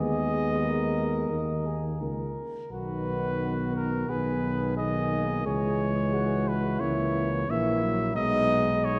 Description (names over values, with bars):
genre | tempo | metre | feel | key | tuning
classical, brass quintet | 88 BPM | 4/4 | rubato | G# minor | A4 = 440 Hz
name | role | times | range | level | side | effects
warm trumpet | melody | 0.0-9.0 s | A#4 to E5 | -33 LUFS | equal | none
mellow flugelhorn | second line | 0.0-9.0 s | D#4 to A#4 | -37 LUFS | equal | none
warm French horn | accompaniment | 0.0-9.0 s | G#3 to B3 | -35 LUFS | equal | none
warm trombone | accompaniment | 0.0-9.0 s | D#3 to G#3 | -35 LUFS | equal | none
mellow tuba | bass | 0.0-9.0 s | A#1 to D#2 | -33 LUFS | equal | none
room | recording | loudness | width
wet concert hall reverb, RT60 1.9 s | dark, warm production | -28 LUFS | mono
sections
0.0-9.0 A section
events
none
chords
0.0 G#m/D#; 1.3 D#5; 2.7 B; 4.1 G#m/B; 5.5 C#m; 6.8 A#dim/C#; 8.2 G#m/B